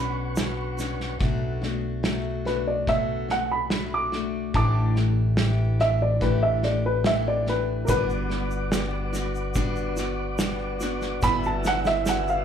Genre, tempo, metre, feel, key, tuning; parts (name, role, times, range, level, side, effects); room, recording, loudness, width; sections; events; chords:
acoustic folk duo or small band; 72 BPM; 4/4; straight; B minor; A4 = 440 Hz
dark upright piano; melody; 0.0-12.4 s; A#4 to D6; -25 LUFS; right 1 dB; slapback echo
picked steel-string acoustic guitar; accompaniment; 0.0-12.4 s; A2 to G4; -31 LUFS; left 4 dB; slapback echo
mellow tonewheel organ; sustained chords; 0.0-1.2, 7.9-12.4 s; B4 to E6; -33 LUFS; left 1 dB; slow rotary speaker
fingered electric bass; bass; 0.0-12.4 s; G1 to B1; -27 LUFS; equal
loose indie drum kit; drums; 0.4-12.3 s; kick drum, snare drum; -29 LUFS; right 1 dB
tube shaker; percussion; 0.4-1.0, 7.9-12.4 s; -42 LUFS; right 3 dB
light reverb; live gig heard through the venue's PA, club reverb; -22 LUFS; side -8 dB against mid
0.0-1.2 A section; 1.2-12.4 B section
upright piano solo 1.2-12.4; drum fill 11.2-12.4
0.0 Bmadd9; 1.2 Bm7; 4.5 A7sus4; 7.9 Gmaj7; 11.2 Emadd9/G